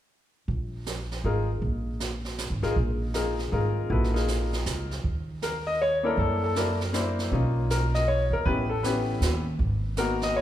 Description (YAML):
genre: jazz piano trio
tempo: 158 BPM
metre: 3/4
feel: swing 64% on 8ths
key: unclear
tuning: A4 = 439 Hz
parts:
  - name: upright bass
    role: bass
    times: 0.5-10.4 s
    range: Ab1 to Gb2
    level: -28 LUFS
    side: right 1 dB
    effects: none
  - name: jazz brush drum kit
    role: drums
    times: 0.5-10.4 s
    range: brushed snare drum, hi-hat, kick drum, snare drum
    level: -33 LUFS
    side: right 3 dB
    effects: none
  - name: bright upright piano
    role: melody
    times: 1.2-10.4 s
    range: Bb3 to Eb5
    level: -27 LUFS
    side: left 2 dB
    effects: none
room: moderate recital hall reverb, RT60 1.7 s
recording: recorded in a church or concert hall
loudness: -24 LUFS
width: side -12 dB against mid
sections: 0.5-5.0 A section; 5.0-10.4 B section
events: none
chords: 0.5 Bb7sus4; 5.0 Eb5; 6.2 Gb7alt; 7.3 Bmaj9#11; 8.5 A9; 9.6 Abm9